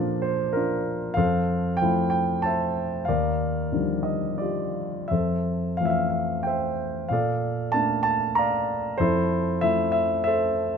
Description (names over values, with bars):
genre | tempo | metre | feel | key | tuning
classical, lyrical solo piano | 85-99 BPM | 3/4 | rubato | F major | A4 = 442 Hz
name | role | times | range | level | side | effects
dark concert grand piano | solo | 0.0-10.8 s | Eb2 to Bb5 | -22 LUFS | equal | none
room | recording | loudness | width
light reverb | close, detailed microphones | -22 LUFS | side -6 dB against mid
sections
0.0-10.8 A section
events
none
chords
0.0 Bbmaj7; 1.2 Fmaj7; 3.1 Ebmaj9; 5.1 Fmaj7; 7.1 Bbmaj7; 9.0 Fmaj7